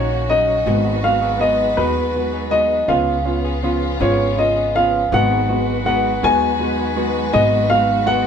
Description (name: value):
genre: six-eight pop ballad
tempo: 54 BPM (dotted quarters)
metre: 6/8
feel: straight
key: unclear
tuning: A4 = 440 Hz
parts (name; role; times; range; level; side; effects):
- warm grand piano; melody; 0.0-8.3 s; B4 to G#5; -18 LUFS; left 1 dB; none
- felt-muted upright piano; accompaniment; 0.0-8.3 s; F#3 to F#4; -22 LUFS; right 2 dB; none
- warm studio string section; sustained chords; 0.0-8.3 s; C#3 to B4; -26 LUFS; equal; none
- direct-recorded clean electric guitar; arpeggios; 0.0-8.3 s; G#2 to G#4; -28 LUFS; left 4 dB; none
- upright bass; bass; 0.0-8.3 s; G#1 to D#2; -23 LUFS; equal; none
room: moderate studio reverb, RT60 0.7 s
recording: band playing live in one room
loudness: -15 LUFS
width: side -7 dB against mid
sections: 0.0-5.1 A section; 5.1-8.3 B section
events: none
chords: 0.0 D#m7; 0.7 G#m7; 2.9 C#7; 5.1 G#m7